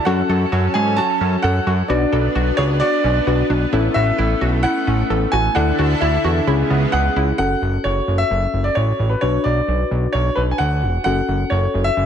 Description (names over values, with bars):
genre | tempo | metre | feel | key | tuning
pop | 131 BPM | 4/4 | straight | F# minor | A4 = 442 Hz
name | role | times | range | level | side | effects
warm concert grand piano | melody | 0.0-12.1 s | B4 to A5 | -21 LUFS | right 1 dB | dub echo
mellow FM electric piano | accompaniment | 0.0-12.1 s | C#4 to B4 | -23 LUFS | left 5 dB | chorus
lush unison pad | sustained chords | 0.0-7.4 s | C#3 to A4 | -25 LUFS | equal | chorus
analog pluck | arpeggios | 0.0-7.3 s | B3 to A4 | -26 LUFS | right 3 dB | chorus, dub echo
fat analog bass | bass | 0.1-12.1 s | E1 to G#2 | -19 LUFS | equal | none
room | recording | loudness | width
moderate echo chamber reverb, RT60 1.3 s | echo-heavy mix | -16 LUFS | side -8 dB against mid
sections
0.0-7.4 A section; 7.4-12.1 B section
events
none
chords
0.1 F#m; 1.9 Bmadd9; 3.7 Aadd9; 5.6 Dsus2; 6.5 C#m7; 7.4 F#m; 9.2 Bm; 11.1 F#m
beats
| 0.06 0.52 0.98 1.44 | 1.90 2.35 2.81 3.27 | 3.73 4.19 4.64 5.10 | 5.56 6.02 6.48 6.93 | 7.39 7.85 8.31 8.77 | 9.22 9.68 10.14 10.60 | 11.06 11.51 11.97